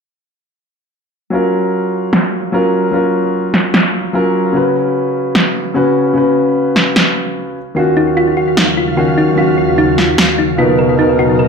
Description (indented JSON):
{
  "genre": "future bass",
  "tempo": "149 BPM",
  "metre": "4/4",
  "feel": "swing 56% on 16ths, half-time",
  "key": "F# major",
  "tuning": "A4 = 440 Hz",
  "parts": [
    { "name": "dark concert grand piano", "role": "accompaniment", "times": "1.3-11.5 s", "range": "B2 to B4", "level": "-13 LUFS", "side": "equal", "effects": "low-pass filter, ping-pong delay" },
    { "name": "electronic snare drum", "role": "drums", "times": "2.1-10.3 s", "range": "none", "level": "-14 LUFS", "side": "equal", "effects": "low-pass filter on snare, studio reverb" },
    { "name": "ethereal airy pad", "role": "sustained chords", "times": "8.0-11.5 s", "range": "D#2 to E#5", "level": "-18 LUFS", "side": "equal", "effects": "ensemble chorus, built-in reverb" },
    { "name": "thumb-piano-like synth pluck", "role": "arpeggios", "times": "7.8-11.4 s", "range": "D#4 to A#4", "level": "-16 LUFS", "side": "equal", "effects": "chorus, ping-pong delay" }
  ],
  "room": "wet plate reverb, RT60 1.3 s, digital ambience",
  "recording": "dreamy mix soaked in reverb",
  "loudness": "-11 LUFS",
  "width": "side -5 dB against mid",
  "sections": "1.3-11.5 A section",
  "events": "filter sweep on drum 1.3-11.5",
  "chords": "1.3 F#maj7; 4.5 C#7sus4; 7.6 D#m9; 10.8 Bmaj7",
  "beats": "| 1.32 1.73 2.13 2.53 | 2.93 3.34 3.74 4.14 | 4.54 4.95 5.35 5.75 | 6.16 6.56 6.96 7.36 | 7.77 8.17 8.57 8.97 | 9.38 9.78 10.18 10.59 | 10.99 11.39"
}